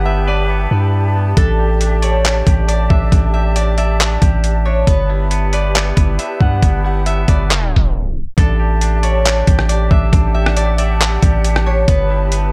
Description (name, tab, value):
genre	hip hop, atmospheric cloud-rap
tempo	137 BPM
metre	4/4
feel	half-time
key	unclear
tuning	A4 = 441 Hz
part	Celtic harp	melody	0.0-12.5 s	A4 to F#5	-24 LUFS	equal	digital delay
part	breathy large flute ensemble	sustained chords	0.0-12.5 s	G4 to A5	-27 LUFS	equal	sidechain pumping
part	twangy electric guitar	arpeggios	0.0-12.5 s	B3 to D5	-29 LUFS	equal	digital delay
part	long sustained 808-style bass	bass	0.0-12.5 s	G1 to G2	-18 LUFS	equal	none
part	trip hop sampler-style drum kit	drums	1.4-12.4 s	handclaps, hi-hat, kick drum, rim click	-17 LUFS	equal	none
room	digital ambience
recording	tape stop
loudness	-15 LUFS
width	mono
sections	0.0-8.4 A section; 8.4-12.5 B section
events	tape stop 7.5-8.4; break 7.9-8.4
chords	0.0 G69; 1.4 A7sus4; 4.9 G69; 8.4 A7sus4; 11.9 G69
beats	0.06 0.49 0.93 | 1.37 1.81 2.25 2.68 | 3.12 3.56 4.00 4.43 | 4.87 5.31 5.75 6.19 | 6.62 7.06 7.50 7.94 | 8.38 8.81 9.25 9.69 | 10.13 10.57 11.00 11.44 | 11.88 12.32